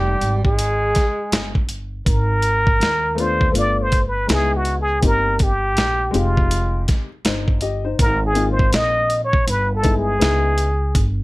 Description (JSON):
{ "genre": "hip hop, jazz-hop", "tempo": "81 BPM", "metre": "4/4", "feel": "swing 62% on 16ths", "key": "Ab major", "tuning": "A4 = 438 Hz", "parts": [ { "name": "trumpet with plunger mute", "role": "melody", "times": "0.0-11.1 s", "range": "F4 to Eb5", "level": "-20 LUFS", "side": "equal", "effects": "none" }, { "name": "growling tenor saxophone", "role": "second line", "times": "0.0-1.7 s", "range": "G3 to Ab3", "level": "-27 LUFS", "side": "right 3 dB", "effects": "none" }, { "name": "upright bass", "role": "bass", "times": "0.0-11.2 s", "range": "F1 to Eb2", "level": "-22 LUFS", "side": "equal", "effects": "none" }, { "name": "dusty soul sampler-style drum kit", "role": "drums", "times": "0.2-11.2 s", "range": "hi-hat, kick drum, snare drum", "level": "-19 LUFS", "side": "equal", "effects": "none" }, { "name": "dark grand piano", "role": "accompaniment", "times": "3.1-10.7 s", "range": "Ab3 to Eb5", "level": "-25 LUFS", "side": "left 5 dB", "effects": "none" } ], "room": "little or no reverb", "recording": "none", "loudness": "-16 LUFS", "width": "side -20 dB against mid", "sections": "0.0-2.1 A section; 2.1-11.2 B section", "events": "break 0.0-2.1; muted trumpet solo 2.1-11.2", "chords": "0.2 N.C.; 2.1 Absus2; 3.5 G7; 4.3 Dbm7; 5.0 Cm7/G; 6.1 Fm9; 8.0 Ab69; 9.5 G; 10.2 Dbm7" }